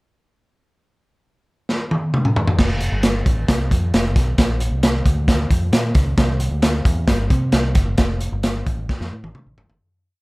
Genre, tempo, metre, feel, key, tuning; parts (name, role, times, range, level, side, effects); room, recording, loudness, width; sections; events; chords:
uptempo 1960s-style soul; 133 BPM; 4/4; straight; F major; A4 = 439 Hz
crunchy breakbeat drum kit; drums; 1.7-9.8 s; crash cymbal, hi-hat, kick drum, snare drum, toms; -17 LUFS; equal
fingered electric bass; bass; 2.6-9.8 s; F1 to C3; -21 LUFS; equal
light reverb; -16 LUFS; side -24 dB against mid
0.8-2.6 pickup bar; 2.6-9.8 A section
drum fill 1.7-2.6, 8.9-9.8; fade-out 8.0-9.8